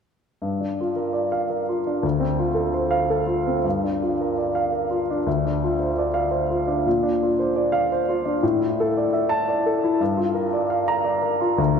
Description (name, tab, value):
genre	neoclassical minimalist piano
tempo	113 BPM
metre	3/4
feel	rubato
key	unclear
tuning	A4 = 441 Hz
part	warm baby grand piano	solo	0.4-11.8 s	D2 to Bb5	-20 LUFS	equal	none
room	wet church reverb, RT60 3.5 s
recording	recorded in a church or concert hall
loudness	-20 LUFS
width	side -6 dB against mid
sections	0.4-3.6 A section; 3.6-11.8 B section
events	none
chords	0.4 Gm7; 2.0 Dm7; 3.6 Gm7; 5.3 Dm7; 6.9 Bbadd9; 8.4 Asus4; 10.0 Gm7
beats	| 0.43 0.97 1.51 | 2.04 2.56 3.10 | 3.65 4.19 4.73 | 5.26 5.79 6.32 | 6.85 7.38 7.90 | 8.42 8.95 9.48 | 10.00 10.53 11.06 | 11.58